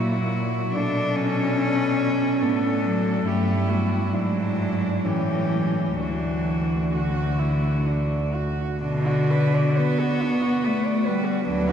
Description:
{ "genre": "classical, lyrical piece for cello ensemble", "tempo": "61-73 BPM", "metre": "3/4", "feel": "rubato", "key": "D major", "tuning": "A4 = 440 Hz", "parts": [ { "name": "rich cello", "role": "melody", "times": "0.0-11.7 s", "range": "E4 to B4", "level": "-32 LUFS", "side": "left 4 dB", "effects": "none" }, { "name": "warm cello", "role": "second line", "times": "0.0-11.7 s", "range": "C#4 to D5", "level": "-30 LUFS", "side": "right 5 dB", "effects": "none" }, { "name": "warm cello", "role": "accompaniment", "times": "0.0-11.7 s", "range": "D3 to D4", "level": "-22 LUFS", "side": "left 1 dB", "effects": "none" }, { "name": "warm cello", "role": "bass", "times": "0.0-11.7 s", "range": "D2 to B2", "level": "-28 LUFS", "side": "right 1 dB", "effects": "none" } ], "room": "wet cathedral reverb, RT60 5.5 s", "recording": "dark, warm production", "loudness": "-21 LUFS", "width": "side -8 dB against mid", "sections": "0.0-8.8 A section; 8.8-11.7 B section", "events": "none", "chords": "0.0 F#7/A#; 0.8 Bm7; 3.2 Em/G; 4.1 E7/G#; 5.0 A7; 6.0 D; 8.8 Bm" }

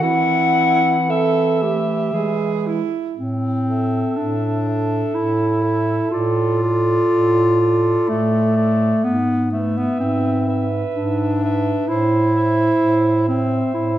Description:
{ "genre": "classical, lyrical piece for single-reed quartet", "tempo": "55-66 BPM", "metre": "3/4", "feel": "rubato", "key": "A minor", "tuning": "A4 = 440 Hz", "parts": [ { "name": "mellow soprano saxophone", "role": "melody", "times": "0.0-14.0 s", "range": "D5 to F#5", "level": "-24 LUFS", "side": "left 3 dB", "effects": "none" }, { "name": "warm alto saxophone", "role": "second line", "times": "0.0-14.0 s", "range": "E4 to C5", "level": "-24 LUFS", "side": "right 6 dB", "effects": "none" }, { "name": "warm clarinet", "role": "accompaniment", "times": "0.0-14.0 s", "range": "G#3 to F4", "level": "-19 LUFS", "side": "equal", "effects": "none" }, { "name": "mellow bass clarinet", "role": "bass", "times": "0.0-14.0 s", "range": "G#2 to E3", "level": "-23 LUFS", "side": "right 2 dB", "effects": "none" } ], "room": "wet recital hall reverb, RT60 1.4 s", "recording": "none", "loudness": "-16 LUFS", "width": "side -12 dB against mid", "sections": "0.0-3.2 A section; 3.2-14.0 B section", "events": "none", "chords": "0.0 Am/E; 2.1 E; 3.2 Am; 6.1 Dm/A; 9.0 E7/G#; 11.9 Am" }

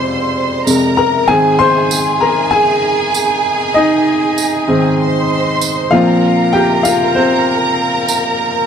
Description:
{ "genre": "piano-driven pop", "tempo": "97 BPM", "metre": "4/4", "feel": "straight", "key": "unclear", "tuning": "A4 = 440 Hz", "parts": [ { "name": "rich studio violin section", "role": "second line", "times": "0.0-8.7 s", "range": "Ab4 to C6", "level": "-17 LUFS", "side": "right 3 dB", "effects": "none" }, { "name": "clear upright piano", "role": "accompaniment", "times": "0.0-8.7 s", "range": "F2 to C6", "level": "-12 LUFS", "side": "left 1 dB", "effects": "none" }, { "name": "tambourine", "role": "percussion", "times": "0.7-8.2 s", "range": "none", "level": "-20 LUFS", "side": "right 9 dB", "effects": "none" } ], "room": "wet studio ambience, RT60 0.5 s", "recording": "dark, warm production", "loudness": "-11 LUFS", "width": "side -7 dB against mid", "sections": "0.0-8.7 A section", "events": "upright piano solo 0.0-8.7", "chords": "0.0 Fm; 1.3 Ab; 5.9 Bbsus2" }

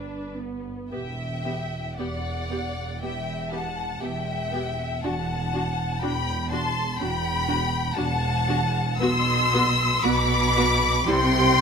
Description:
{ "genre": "classical, slow romantic movement for string orchestra", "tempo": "54-63 BPM", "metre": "4/4", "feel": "rubato", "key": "E minor", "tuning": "A4 = 437 Hz", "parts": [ { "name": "rich studio violin section", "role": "second line", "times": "0.0-11.6 s", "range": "B4 to C6", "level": "-28 LUFS", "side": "left 2 dB", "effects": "none" }, { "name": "rich studio viola section", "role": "accompaniment", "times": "0.0-11.2 s", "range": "G3 to G4", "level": "-30 LUFS", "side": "equal", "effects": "none" }, { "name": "warm studio cello section", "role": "bass", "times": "0.0-11.6 s", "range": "E2 to C3", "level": "-29 LUFS", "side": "right 2 dB", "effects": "none" }, { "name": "warm studio double bass section", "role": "bass", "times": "0.0-11.6 s", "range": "E1 to C2", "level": "-30 LUFS", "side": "right 2 dB", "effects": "none" }, { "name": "rich studio violin section", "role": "melody", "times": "0.9-11.6 s", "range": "F#5 to E6", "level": "-27 LUFS", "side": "left 4 dB", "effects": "none" } ], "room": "moderate recital hall reverb, RT60 1.5 s", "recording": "none", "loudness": "-22 LUFS", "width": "side -6 dB against mid", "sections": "0.9-11.6 A section", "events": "none", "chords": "0.0 G; 0.9 Em; 5.0 D/E; 9.0 Bm; 11.1 C" }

